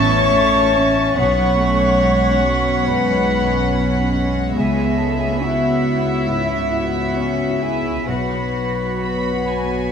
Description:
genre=cinematic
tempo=64-72 BPM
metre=4/4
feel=rubato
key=unclear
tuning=A4 = 440 Hz
part: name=warm studio violin section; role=melody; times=0.0-9.9 s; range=E5 to B5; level=-26 LUFS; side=left 5 dB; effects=none
part: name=flute section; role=second line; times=0.0-9.9 s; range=E5 to C#6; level=-26 LUFS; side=right 3 dB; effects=none
part: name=warm clarinet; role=second line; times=0.0-9.9 s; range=C#5 to F#5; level=-30 LUFS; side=left 3 dB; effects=none
part: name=warm oboe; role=second line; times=0.0-9.9 s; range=A5 to B5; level=-28 LUFS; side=right 6 dB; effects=none
part: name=warm symphonic violin section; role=second line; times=0.0-9.9 s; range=C#5 to E5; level=-31 LUFS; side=left 2 dB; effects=none
part: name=felt-muted upright piano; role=accompaniment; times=0.0-9.9 s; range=B1 to C#5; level=-25 LUFS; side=left 2 dB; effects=none
part: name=warm studio viola section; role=accompaniment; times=0.0-9.9 s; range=B3 to C#4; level=-27 LUFS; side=right 2 dB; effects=none
part: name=mellow French horn section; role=sustained chords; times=0.0-9.9 s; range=E4 to C#5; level=-22 LUFS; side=left 3 dB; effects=none
part: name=concert harp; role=arpeggios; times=0.0-9.9 s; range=A2 to E6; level=-27 LUFS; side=left 6 dB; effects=none
part: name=rich symphonic double bass section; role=bass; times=0.0-9.9 s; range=A1 to C#2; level=-24 LUFS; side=right 3 dB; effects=none
part: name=warm symphonic cello section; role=bass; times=0.0-9.9 s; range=F#3 to F#4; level=-25 LUFS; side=right 2 dB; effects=none
room=wet scoring stage reverb, RT60 1.4 s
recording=none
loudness=-15 LUFS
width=side -7 dB against mid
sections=0.0-9.9 A section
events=none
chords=0.0 A; 1.2 Bsus2; 4.6 C#m7; 8.1 Bsus2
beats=0.33 | 1.18 2.01 2.86 3.71 | 4.55 5.40 6.26 7.15 | 8.07 9.01

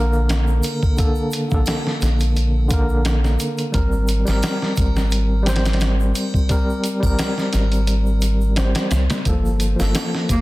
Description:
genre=trip hop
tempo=87 BPM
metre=4/4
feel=swing 54% on 16ths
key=unclear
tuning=A4 = 439 Hz
part: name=bright tine electric piano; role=accompaniment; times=0.0-10.4 s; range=D3 to C5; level=-22 LUFS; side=equal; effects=tremolo, tape echo
part: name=soft dub sub bass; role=bass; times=0.0-10.4 s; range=G1 to C2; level=-18 LUFS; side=equal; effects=tube saturation
part: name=egg shaker and triangle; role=percussion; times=0.1-10.4 s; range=none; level=-35 LUFS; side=right 1 dB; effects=none
part: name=dusty soul sampler-style drum kit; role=drums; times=0.3-10.4 s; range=hi-hat, kick drum, snare drum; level=-22 LUFS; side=equal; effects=none
part: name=warm cello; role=melody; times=10.3-10.4 s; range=Bb3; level=-19 LUFS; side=equal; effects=none
room=little or no reverb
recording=dense, heavily limited modern master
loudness=-17 LUFS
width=side -19 dB against mid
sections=0.0-10.4 A section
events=kick drops out 7.9-9.3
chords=0.0 Bbmaj7; 3.7 Abmaj9; 9.3 Gm9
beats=0.29 | 0.98 1.67 2.36 3.05 | 3.74 4.43 5.12 5.81 | 6.50 7.19 7.88 8.57 | 9.26 9.95

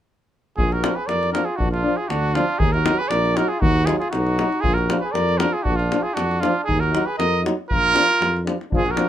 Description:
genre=balkan folk, Balkan brass band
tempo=118 BPM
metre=2/4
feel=swing 54% on 16ths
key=Bb phrygian dominant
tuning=A4 = 441 Hz
part: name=clear trumpet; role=melody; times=0.6-9.1 s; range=F4 to Eb5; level=-22 LUFS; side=right 3 dB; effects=none
part: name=mellow flugelhorn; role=second line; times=0.6-9.1 s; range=D4 to Bb4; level=-27 LUFS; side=left 2 dB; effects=none
part: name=mellow tuba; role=bass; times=0.6-9.0 s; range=Bb1 to F2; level=-24 LUFS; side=equal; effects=none
part: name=davul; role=percussion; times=0.6-9.1 s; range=none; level=-25 LUFS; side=left 1 dB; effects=none
part: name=clear French horn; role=accompaniment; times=0.8-9.1 s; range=D4 to Eb4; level=-26 LUFS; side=left 5 dB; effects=none
part: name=warm euphonium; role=accompaniment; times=0.8-9.1 s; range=F3 to Gb3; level=-27 LUFS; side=right 3 dB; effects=none
room=light reverb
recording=minimal, uncompressed stereo recording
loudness=-18 LUFS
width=side -11 dB against mid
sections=0.6-8.7 A section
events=none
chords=0.6 Bb; 2.6 Ebm; 4.7 Bb; 6.7 Ebm; 7.7 Bb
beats=| 0.58 1.09 | 1.60 2.11 | 2.62 3.12 | 3.63 4.14 | 4.65 5.16 | 5.67 6.17 | 6.68 7.19 | 7.70 8.20 | 8.71

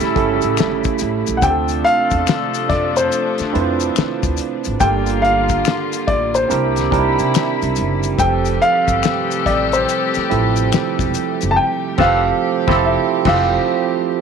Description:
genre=R&B, neo-soul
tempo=71 BPM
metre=4/4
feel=swing 64% on 16ths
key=F major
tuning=A4 = 440 Hz
part: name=dark baby grand piano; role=melody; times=0.0-14.1 s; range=C5 to A5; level=-18 LUFS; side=left 1 dB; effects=slapback echo
part: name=barky tine electric piano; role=accompaniment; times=0.0-14.2 s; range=F3 to C5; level=-20 LUFS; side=right 13 dB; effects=overdrive
part: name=warm studio string section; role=sustained chords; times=0.0-14.2 s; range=C3 to G4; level=-25 LUFS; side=left 3 dB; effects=none
part: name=warm horn section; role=stabs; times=0.0-13.5 s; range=E3 to A4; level=-25 LUFS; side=left 13 dB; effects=none
part: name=upright bass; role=bass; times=0.0-13.6 s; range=E1 to C3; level=-22 LUFS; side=left 1 dB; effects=none
part: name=damped 70s drum kit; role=drums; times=0.0-13.6 s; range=crash cymbal, hi-hat, kick drum, snare drum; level=-22 LUFS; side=left 5 dB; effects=none
part: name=maracas and finger snaps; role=percussion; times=0.0-11.6 s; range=none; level=-27 LUFS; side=left 15 dB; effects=none
room=moderate spring reverb, RT60 1.8 s, small room ambience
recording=1960s-style stereo with parts hard left and right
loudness=-14 LUFS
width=side -6 dB against mid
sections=0.0-14.2 A section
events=band accent 11.6-14.2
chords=0.0 A7; 1.4 Dm7; 4.8 Gm7; 6.5 C7; 8.2 Fmaj9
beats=0.58 | 1.43 2.27 3.12 3.96 | 4.80 5.65 6.50 7.34 | 8.19 9.03 9.88 10.72 | 11.57 12.41 13.26 14.10

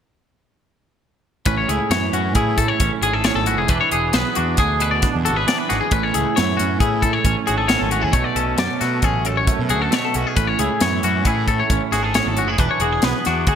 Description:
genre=math rock and midwest emo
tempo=135 BPM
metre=5/4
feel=straight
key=A major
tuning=A4 = 440 Hz
part: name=twangy electric guitar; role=accompaniment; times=1.5-13.6 s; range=F#2 to G#4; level=-23 LUFS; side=right 10 dB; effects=analog chorus
part: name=twangy electric guitar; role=arpeggios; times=1.5-13.6 s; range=F#4 to D5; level=-21 LUFS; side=left 7 dB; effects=none
part: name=fuzz picked electric bass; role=bass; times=1.5-13.6 s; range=E1 to B2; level=-24 LUFS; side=equal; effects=overdrive
part: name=crisp fusion drum kit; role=drums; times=1.5-13.6 s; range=hi-hat, kick drum, snare drum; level=-22 LUFS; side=equal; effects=none
room=light reverb, small room ambience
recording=bright 1980s-style digital production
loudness=-16 LUFS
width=side -8 dB against mid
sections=1.5-13.6 A section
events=none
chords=1.5 Amaj7; 3.7 E7; 5.9 Amaj7; 8.1 Bm9; 10.4 Amaj7; 12.6 E7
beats=| 1.47 1.91 2.36 2.80 3.25 | 3.69 4.14 4.58 5.03 5.47 | 5.92 6.36 6.80 7.25 7.69 | 8.14 8.58 9.03 9.47 9.92 | 10.36 10.80 11.25 11.69 12.14 | 12.58 13.03 13.47

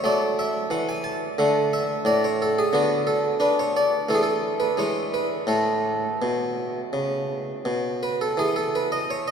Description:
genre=classical, baroque-style suite movement for harpsichord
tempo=83-90 BPM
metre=4/4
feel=rubato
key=A major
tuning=A4 = 435 Hz
part: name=harpsichord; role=solo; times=0.0-9.3 s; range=A2 to A5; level=-21 LUFS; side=equal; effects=none
room=wet cathedral reverb, RT60 6.8 s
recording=heard from further back in the room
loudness=-21 LUFS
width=side -7 dB against mid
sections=0.0-8.4 A section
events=none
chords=0.0 E9sus4; 1.4 D5; 2.7 Bm/D; 4.1 A5/E; 4.8 E; 5.5 A; 8.4 N.C.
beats=| 0.03 0.70 1.39 2.06 | 2.73 3.41 4.09 4.78 | 5.49 6.21 6.94 7.65 | 8.36 9.06

